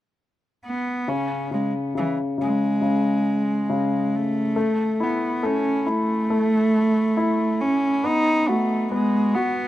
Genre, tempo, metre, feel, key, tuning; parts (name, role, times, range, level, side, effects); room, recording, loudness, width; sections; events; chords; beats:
pop; 69 BPM; 4/4; straight; A4 = 441 Hz
warm cello; melody; 0.7-9.7 s; E3 to D#4; -22 LUFS; right 1 dB; ping-pong delay
clear grand piano; accompaniment; 1.1-9.7 s; C#3 to F#4; -24 LUFS; left 3 dB
moderate studio ambience, RT60 0.5 s; rough home demo mix; -20 LUFS; side -14 dB against mid
0.0-1.1 A section; 1.1-9.7 B section
0.0 N.C.; 4.6 A5; 8.0 B5
0.21 | 1.08 1.95 2.82 3.69 | 4.56 5.43 6.29 7.17 | 8.04 8.90